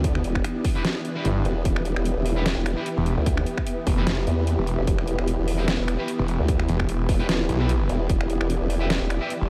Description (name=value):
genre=heavy wobble dubstep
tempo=149 BPM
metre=4/4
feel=swing 55% on 16ths, half-time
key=E minor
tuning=A4 = 440 Hz
part: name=supersaw chords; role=sustained chords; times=0.0-9.5 s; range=E3 to D5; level=-33 LUFS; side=equal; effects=phaser, sidechain pumping, low-pass filter
part: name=formant-sweep wobble bass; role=bass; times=0.0-9.2 s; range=E1 to E2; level=-27 LUFS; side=equal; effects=chorus, overdrive
part: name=dubstep drum kit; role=drums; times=0.0-9.4 s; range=finger snaps, hi-hat, snare drum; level=-33 LUFS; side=equal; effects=overdrive, studio reverb
part: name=electronic kick drum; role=drums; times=0.0-8.2 s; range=none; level=-27 LUFS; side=equal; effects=studio reverb
part: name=granular cloud pad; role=texture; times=0.0-9.5 s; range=B3 to G4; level=-35 LUFS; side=equal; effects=built-in reverb, sidechain pumping
part: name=distorted electric guitar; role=stabs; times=0.8-9.3 s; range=E4 to B4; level=-39 LUFS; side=equal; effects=none
part: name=snarling distorted saw bass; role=bass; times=1.2-9.5 s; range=E1 to B1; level=-26 LUFS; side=equal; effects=distortion, overdrive
room=light reverb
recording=none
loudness=-24 LUFS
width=mono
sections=0.0-9.5 A section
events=none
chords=0.0 Em